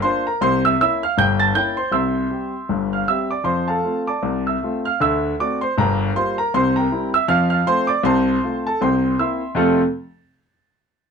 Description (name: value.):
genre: jazz, stride piano.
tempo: 157 BPM.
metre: 4/4.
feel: swing 59% on 8ths.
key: F major.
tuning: A4 = 440 Hz.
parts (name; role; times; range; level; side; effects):
warm grand piano; solo; 0.0-9.8 s; G1 to A6; -17 LUFS; equal; none.
room: light reverb.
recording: close, detailed microphones.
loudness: -17 LUFS.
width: side -6 dB against mid.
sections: 0.0-9.6 A section; 9.6-11.1 B section.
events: none.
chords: 0.4 C7b9; 1.9 C; 3.5 F; 5.0 D7; 5.8 Gm7; 6.5 C7; 7.3 F; 8.1 F/C; 8.8 C7; 9.6 F.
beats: 0.03 | 0.41 0.80 1.18 1.56 | 1.94 2.32 2.71 3.09 | 3.47 3.85 4.23 4.62 | 5.00 5.38 5.76 6.14 | 6.52 6.91 7.29 7.67 | 8.05 8.43 8.81 9.20 | 9.58.